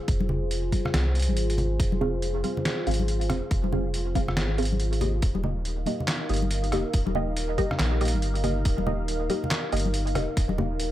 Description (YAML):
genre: deep dubstep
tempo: 140 BPM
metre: 4/4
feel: swing 61% on 16ths, half-time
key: F minor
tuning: A4 = 440 Hz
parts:
  - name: dark analog pad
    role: sustained chords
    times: 0.0-10.9 s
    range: Eb4 to F5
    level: -32 LUFS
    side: equal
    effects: chorus
  - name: soft dub sub bass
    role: bass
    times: 0.1-10.9 s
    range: Eb1 to C2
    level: -27 LUFS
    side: equal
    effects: none
  - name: electronic kick drum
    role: drums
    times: 0.1-10.5 s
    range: none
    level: -25 LUFS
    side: equal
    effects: none
  - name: trip hop sampler-style drum kit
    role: drums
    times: 0.1-10.9 s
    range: handclaps, hi-hat, rim click, snare drum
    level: -31 LUFS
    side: equal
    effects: none
  - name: congas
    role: percussion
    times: 0.2-10.7 s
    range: none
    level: -32 LUFS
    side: left 2 dB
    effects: dub echo
  - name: filtered dub chord stab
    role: stabs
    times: 2.0-10.7 s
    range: Bb3 to F5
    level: -31 LUFS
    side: right 1 dB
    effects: phaser, analog chorus, cassette tape, dub echo
room: light reverb, digital ambience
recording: none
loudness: -24 LUFS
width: side -13 dB against mid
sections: 0.0-10.9 A section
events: none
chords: 0.0 Fm; 5.2 Eb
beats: | 0.08 0.51 0.94 1.37 | 1.79 2.22 2.65 3.08 | 3.51 3.94 4.37 4.79 | 5.22 5.65 6.08 6.51 | 6.94 7.37 7.79 8.22 | 8.65 9.08 9.51 9.94 | 10.37 10.79